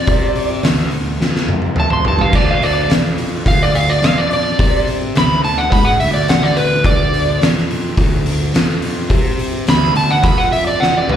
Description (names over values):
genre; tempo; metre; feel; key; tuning
blues rock power trio and southern rock; 106 BPM; 4/4; straight; unclear; A4 = 439 Hz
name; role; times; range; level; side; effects
overdriven slide guitar; melody; 0.0-11.2 s; B4 to C6; -16 LUFS; right 2 dB; slapback echo
fuzz picked electric bass; bass; 0.0-11.2 s; D2 to C3; -18 LUFS; equal; overdrive
oversized low-tuned drum kit; drums; 0.1-11.2 s; crash cymbal, hi-hat, kick drum, snare drum, toms; -16 LUFS; equal; none
room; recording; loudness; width
light reverb; live gig heard through the venue's PA, club reverb; -12 LUFS; side -9 dB against mid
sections
0.0-11.2 A section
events
electric slide guitar solo 0.0-11.2; drum fill 1.2-2.3, 10.8-11.2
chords
0.0 Dm7